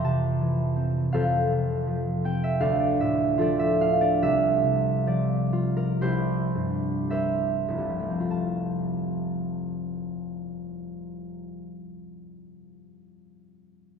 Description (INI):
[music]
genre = classical, solo harp piece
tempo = 46-84 BPM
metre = 4/4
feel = rubato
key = F major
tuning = A4 = 441 Hz
[part]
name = concert harp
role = solo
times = 0.0-12.1 s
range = F1 to C6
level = -24 LUFS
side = equal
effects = none
[sound]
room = wet cathedral reverb, RT60 4.2 s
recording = none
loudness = -23 LUFS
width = side -6 dB against mid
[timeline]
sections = 0.0-8.3 A section; 8.3-12.7 B section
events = slowing down 0.0-8.3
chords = 0.0 C7/F; 1.1 F; 2.6 Dm; 4.2 F/C; 6.0 C7; 8.3 F